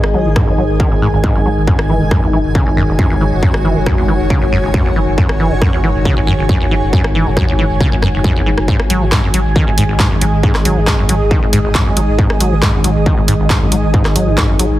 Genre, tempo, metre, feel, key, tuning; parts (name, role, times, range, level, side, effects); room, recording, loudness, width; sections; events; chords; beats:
driving peak-time techno; 137 BPM; 4/4; straight; A4 = 439 Hz
saturated sub bass; bass; 0.0-14.8 s; F#1 to G#1; -19 LUFS; equal; tube saturation, sidechain pumping, low-pass filter
analog drone; drone; 0.0-14.8 s; G#2 to D#3; -19 LUFS; left 1 dB; chorus, sidechain pumping
techno drum kit; drums; 0.0-14.7 s; handclaps, hi-hat, rim click; -19 LUFS; equal; overdrive, sidechain pumping on hats
granular cloud pad; texture; 0.0-14.8 s; F#4 to G#5; -20 LUFS; right 1 dB; built-in reverb, sidechain pumping
acid bass, saw; riff; 0.1-14.7 s; F#1 to F#3; -18 LUFS; equal; lush chorus, sidechain pumping, dub echo
electronic kick drum; drums; 0.4-14.5 s; -15 LUFS; equal; distortion, overdrive
light reverb, digital ambience; heavily compressed radio sound, multiband compression; -11 LUFS; side -15 dB against mid
0.0-14.8 A section
0.0 G#5; 1.7 F#5; 8.7 G#5
0.36 0.80 1.24 | 1.67 2.11 2.55 2.99 | 3.43 3.86 4.30 4.74 | 5.18 5.62 6.05 6.49 | 6.93 7.37 7.81 8.24 | 8.68 9.12 9.56 9.99 | 10.43 10.87 11.31 11.75 | 12.19 12.62 13.06 13.50 | 13.94 14.38